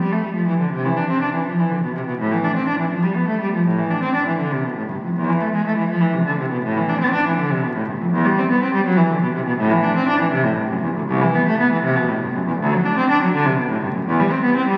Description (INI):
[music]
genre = classical, baroque-style suite movement for unaccompanied cello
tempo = 81 BPM (dotted quarters)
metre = 12/8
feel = rubato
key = unclear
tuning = A4 = 440 Hz
[part]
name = rich cello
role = solo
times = 0.0-14.8 s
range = C2 to D4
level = -19 LUFS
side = equal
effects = none
[sound]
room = wet concert hall reverb, RT60 2.0 s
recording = very old 78 rpm record, vinyl crackle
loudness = -19 LUFS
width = mono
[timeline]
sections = 0.0-14.8 A section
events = none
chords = none